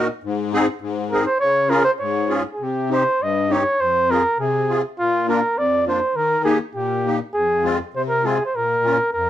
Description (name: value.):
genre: alpine folk, alpine dance band.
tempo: 101 BPM.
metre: 2/4.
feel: straight.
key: unclear.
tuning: A4 = 440 Hz.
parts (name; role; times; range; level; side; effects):
clear flugelhorn; melody; 0.0-9.3 s; F4 to Eb5; -19 LUFS; right 1 dB; none.
musette accordion; accompaniment; 0.0-9.3 s; F2 to Ab4; -22 LUFS; left 3 dB; none.
room: moderate studio reverb, RT60 0.6 s.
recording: dark, warm production.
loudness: -17 LUFS.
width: side -12 dB against mid.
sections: 0.0-2.6 A section; 2.6-9.3 B section.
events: none.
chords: 0.2 Ab; 1.4 Db; 2.6 Cm; 3.8 Fm; 5.0 Bb; 6.2 Eb; 7.4 Fm; 8.5 Bbm.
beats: | 0.23 0.82 | 1.41 2.00 | 2.60 3.19 | 3.79 4.38 | 4.97 5.56 | 6.15 6.75 | 7.35 7.95 | 8.55 9.14.